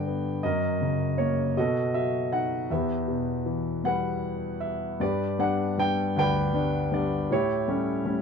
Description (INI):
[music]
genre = classical, lyrical solo piano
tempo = 53 BPM (dotted quarters)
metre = 6/8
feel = rubato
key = E minor, G major from 5.0 s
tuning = A4 = 440 Hz
[part]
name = warm grand piano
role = solo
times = 0.0-8.2 s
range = D2 to G5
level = -24 LUFS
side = equal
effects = none
[sound]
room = light reverb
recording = dark, warm production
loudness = -24 LUFS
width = side -6 dB against mid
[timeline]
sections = 0.0-5.0 A section; 5.0-8.2 B section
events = none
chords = 0.4 F#; 1.6 B7; 2.7 Em; 5.0 G; 7.3 A7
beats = | 0.44 1.57 | 2.70 3.84 | 5.01 6.17 | 7.31